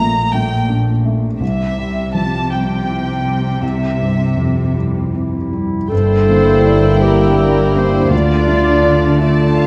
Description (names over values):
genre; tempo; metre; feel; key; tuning
cinematic; 54 BPM (dotted quarters); 6/8; rubato; unclear; A4 = 438 Hz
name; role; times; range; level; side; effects
dark chamber violin section; melody; 0.0-9.7 s; E5 to Bb5; -26 LUFS; equal; none
felt-muted upright piano; accompaniment; 0.0-9.7 s; Bb1 to E5; -21 LUFS; equal; none
warm studio cello section; bass; 0.0-9.7 s; G2 to D3; -22 LUFS; equal; none
warm clarinet; second line; 4.7-9.7 s; E4 to A4; -19 LUFS; equal; none
warm studio violin section; second line; 5.9-9.7 s; Bb4 to F5; -24 LUFS; equal; none
rich studio viola section; accompaniment; 5.9-9.7 s; A3 to E4; -24 LUFS; equal; none
mellow French horn section; sustained chords; 5.9-9.7 s; A3 to D4; -23 LUFS; equal; none
concert harp; arpeggios; 5.9-9.7 s; G2 to D5; -22 LUFS; equal; none
dark studio double bass section; bass; 5.9-9.7 s; G1 to D2; -22 LUFS; equal; none
room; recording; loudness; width
moderate scoring stage reverb, RT60 1.5 s; none; -15 LUFS; mono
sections
0.0-5.9 A section; 5.9-9.7 B section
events
none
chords
0.0 Gmadd9/Bb; 1.4 C; 5.9 Gm; 8.1 Dmadd9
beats
0.33 | 1.42 2.51 | 3.62 4.75 | 5.92 7.03 | 8.12 9.21